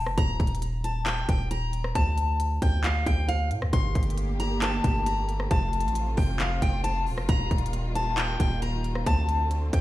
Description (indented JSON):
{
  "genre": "hip hop, trap",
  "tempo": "135 BPM",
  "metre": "4/4",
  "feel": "half-time",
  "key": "unclear",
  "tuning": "A4 = 445 Hz",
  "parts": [
    { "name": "hard-hitting 808-style bass", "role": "bass", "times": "0.0-9.8 s", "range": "Eb1 to A2", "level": "-28 LUFS", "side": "equal", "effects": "none" },
    { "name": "trap drum kit", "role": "drums", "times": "0.1-9.8 s", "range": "handclaps, hi-hat, kick drum, rim click", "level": "-26 LUFS", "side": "equal", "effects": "none" },
    { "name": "picked steel-string acoustic guitar", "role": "melody", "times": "0.2-9.8 s", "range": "F5 to C6", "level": "-30 LUFS", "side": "left 2 dB", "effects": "analog delay" },
    { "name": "rich symphonic string section", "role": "sustained chords", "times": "3.7-9.8 s", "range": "C3 to G4", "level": "-34 LUFS", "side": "right 1 dB", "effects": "none" }
  ],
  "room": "little or no reverb",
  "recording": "played on a big sound system in a bare room, stone room reverb",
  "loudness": "-24 LUFS",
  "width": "side -15 dB against mid",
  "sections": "0.0-9.8 A section",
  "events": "none",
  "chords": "0.2 Eb5; 2.0 D5; 3.7 Gmadd9; 5.5 F; 7.3 Ebadd9; 9.1 Dm7"
}